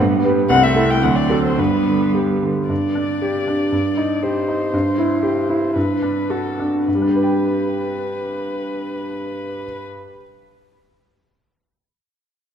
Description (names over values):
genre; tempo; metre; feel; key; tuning
quick classical-period movement for piano quartet; 101-122 BPM; 2/4; rubato; G major; A4 = 440 Hz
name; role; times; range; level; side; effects
clear cello; second line; 0.0-2.5 s; F#3 to A3; -23 LUFS; right 4 dB; none
bright grand piano; accompaniment; 0.0-10.3 s; C2 to G5; -18 LUFS; equal; none
warm viola; accompaniment; 0.0-2.5 s; B3 to C4; -24 LUFS; right 5 dB; none
warm violin; melody; 0.5-9.8 s; A4 to G5; -25 LUFS; left 4 dB; none
room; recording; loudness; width
wet scoring stage reverb, RT60 2.0 s; none; -17 LUFS; side -8 dB against mid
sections
0.0-2.7 A section; 2.7-6.9 B section; 6.9-9.1 C section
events
slowing down 4.2-6.9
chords
0.0 G; 0.5 Am/C; 1.0 D7; 1.6 G; 2.7 G5; 3.7 Cm/G; 4.7 C/G; 5.8 D/G; 6.9 G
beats
| 0.50 1.03 | 1.58 2.15 | 2.70 3.22 | 3.72 4.23 | 4.73 5.23 | 5.75 6.29 | 6.87 7.42 | 7.97 8.53